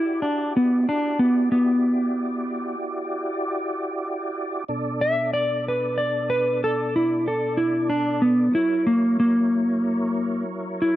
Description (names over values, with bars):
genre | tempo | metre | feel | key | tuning
blues | 62 BPM (dotted quarters) | 12/8 | straight | B minor | A4 = 440 Hz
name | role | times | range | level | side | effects
clean lap steel guitar | melody | 0.0-11.0 s | A#3 to E5 | -20 LUFS | equal | none
tonewheel organ | sustained chords | 0.0-11.0 s | B2 to D5 | -29 LUFS | right 1 dB | overdrive, chorus vibrato, slow rotary speaker
room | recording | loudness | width
light reverb | dry, close 1970s-style studio recording | -20 LUFS | side -14 dB against mid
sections
0.0-11.0 A section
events
electric slide guitar solo 0.0-11.0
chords
0.0 Em7; 4.7 Bm7; 8.5 F#7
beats
| 0.84 1.80 2.76 3.72 | 4.68 5.64 6.61 7.57 | 8.53 9.49 10.45